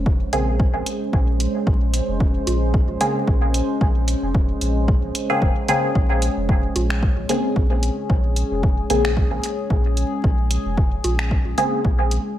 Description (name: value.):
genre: dub techno.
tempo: 112 BPM.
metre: 4/4.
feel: swing 55% on 16ths.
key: Bb minor.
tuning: A4 = 440 Hz.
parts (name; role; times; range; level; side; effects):
deep dark ambient pad; sustained chords; 0.0-12.4 s; Ab3 to C5; -26 LUFS; equal; chorus, built-in reverb, sidechain pumping.
pure sine sub bass; bass; 0.0-12.2 s; F1 to Bb1; -23 LUFS; equal; tube saturation, sidechain pumping.
electronic kick drum; drums; 0.1-12.0 s; none; -20 LUFS; equal; none.
filtered dub chord stab; stabs; 0.3-11.8 s; Db3 to Ab4; -23 LUFS; equal; phaser, dub echo.
punchy analog drum machine; drums; 0.3-12.2 s; finger snaps, hi-hat; -28 LUFS; right 1 dB; dub echo.
congas; percussion; 2.5-7.4, 11.0-11.7 s; none; -31 LUFS; right 4 dB; sidechain pumping on perc, dub echo.
room: light reverb, digital ambience.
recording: vinyl crackle.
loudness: -18 LUFS.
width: side -12 dB against mid.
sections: 0.0-12.4 A section.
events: none.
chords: 0.0 Bbm9.